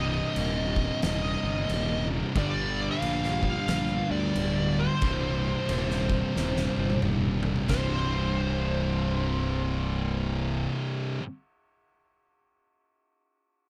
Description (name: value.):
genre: stoner and doom metal.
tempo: 90 BPM.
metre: 4/4.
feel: swing 61% on 8ths.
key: C minor.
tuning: A4 = 440 Hz.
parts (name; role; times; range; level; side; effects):
fuzz lead guitar; melody; 0.0-10.7 s; C5 to F5; -35 LUFS; equal; wah, distortion, slapback echo.
thick fuzz guitar; riff; 0.0-11.2 s; C2 to G3; -34 LUFS; equal; distortion.
thick fuzz guitar; riff; 0.0-11.2 s; C2 to G3; -35 LUFS; equal; distortion.
tight distorted guitar; riff; 0.0-11.2 s; C2 to G3; -39 LUFS; equal; distortion.
fuzz fingered electric bass; bass; 0.0-10.7 s; C1 to D2; -33 LUFS; equal; overdrive.
oversized low-tuned drum kit; drums; 0.4-7.9 s; crash cymbal, kick drum, ride cymbal, snare drum, toms; -36 LUFS; equal; none.
room: little or no reverb.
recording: none.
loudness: -28 LUFS.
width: mono.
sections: 0.0-7.7 A section; 7.7-10.4 B section.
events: drum fill 6.4-7.7.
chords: 0.0 Cm; 2.4 Gm; 5.0 Cm; 7.7 C5.